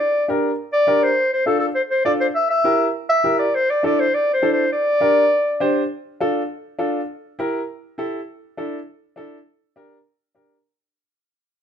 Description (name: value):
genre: latin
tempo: 203 BPM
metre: 4/4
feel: straight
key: D minor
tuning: A4 = 441 Hz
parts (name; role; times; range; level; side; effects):
- warm clarinet; melody; 0.0-5.7 s; A4 to E5; -17 LUFS; left 1 dB; none
- clear upright piano; accompaniment; 0.3-10.6 s; D4 to C5; -22 LUFS; equal; none
room: moderate studio reverb, RT60 0.9 s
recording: nothing above 10.9 kHz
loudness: -17 LUFS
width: side -8 dB against mid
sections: 0.0-5.9 A section; 5.9-10.6 B section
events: fade-out 5.9-10.6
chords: 0.0 Gm; 1.2 Dm; 2.4 Edim; 3.5 Asus4; 4.7 Gm; 5.9 Dm; 7.1 Edim; 8.3 Asus4; 9.5 Gm